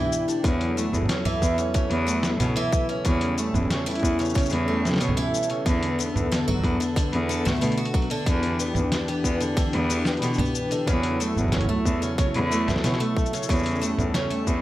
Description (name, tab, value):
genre	folktronica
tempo	92 BPM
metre	4/4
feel	straight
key	unclear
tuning	A4 = 441 Hz
part	warm analog pad	sustained chords	0.0-14.6 s	D3 to A4	-30 LUFS	left 2 dB	chorus
part	picked twelve-string acoustic guitar	arpeggios	0.0-14.6 s	C#3 to A4	-28 LUFS	right 1 dB	ping-pong delay
part	lo-fi sampler-style drum kit	drums	0.1-14.6 s	cabasa, congas, hi-hat, snare drum	-28 LUFS	equal	none
part	clear cello	bass	0.4-14.6 s	E2 to B2	-26 LUFS	equal	tube saturation
part	electronic kick drum	drums	0.4-14.6 s	none	-26 LUFS	equal	overdrive
room	light reverb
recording	dark, warm production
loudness	-21 LUFS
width	side -15 dB against mid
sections	0.0-14.6 A section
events	none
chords	0.4 F#m7/E; 3.1 A7/E; 5.7 Bm7/E; 8.3 Em7; 10.9 F#m7/E; 13.5 A7/E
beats	| 0.45 1.10 1.75 2.40 | 3.06 3.71 4.36 5.01 | 5.67 6.32 6.97 7.62 | 8.27 8.93 9.58 10.23 | 10.88 11.54 12.19 12.84 | 13.49 14.14